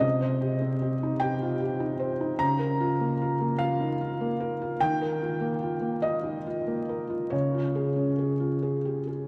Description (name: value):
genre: neoclassical minimalist piano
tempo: 46-52 BPM (dotted quarters)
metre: 6/8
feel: rubato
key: Bb dorian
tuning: A4 = 441 Hz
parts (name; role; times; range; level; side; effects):
- felt-muted upright piano; solo; 0.0-9.3 s; C3 to Bb5; -28 LUFS; equal; none
room: wet cathedral reverb, RT60 5.1 s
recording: in a vast, echoing space, vinyl crackle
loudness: -28 LUFS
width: mono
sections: 0.0-9.3 A section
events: none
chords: 0.0 Cm; 2.4 Bbm/Db; 4.8 Ebadd9; 7.3 Db